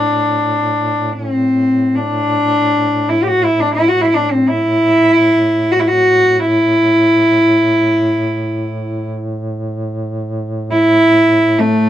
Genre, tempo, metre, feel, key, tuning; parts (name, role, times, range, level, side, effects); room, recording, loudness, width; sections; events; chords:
caucasian folk, Caucasian lament; free time; A dorian; A4 = 440 Hz
warm cello; melody; 0.0-11.9 s; A3 to G4; -11 LUFS; equal
mellow duduk; drone; 0.0-11.9 s; A2; -22 LUFS; right 1 dB; stereo widening
light reverb; dry, close 1970s-style studio recording; -12 LUFS; side -12 dB against mid
0.0-11.9 A section